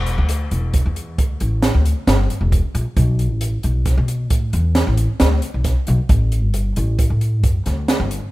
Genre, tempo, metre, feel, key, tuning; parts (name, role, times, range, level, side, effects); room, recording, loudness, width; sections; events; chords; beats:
progressive instrumental, band music in an uneven meter; 134 BPM; 7/4; straight; E minor; A4 = 440 Hz
upright bass; bass; 0.0-8.2 s; E1 to B2; -17 LUFS; equal
open jazz drum kit; drums; 0.1-8.2 s; hi-hat, kick drum, snare drum; -20 LUFS; right 1 dB
little or no reverb; -16 LUFS; side -18 dB against mid
0.0-8.3 A section
0.29 0.74 1.18 1.63 2.08 2.52 | 2.97 3.42 3.86 4.31 4.76 5.20 5.65 | 6.10 6.54 6.99 7.44 7.89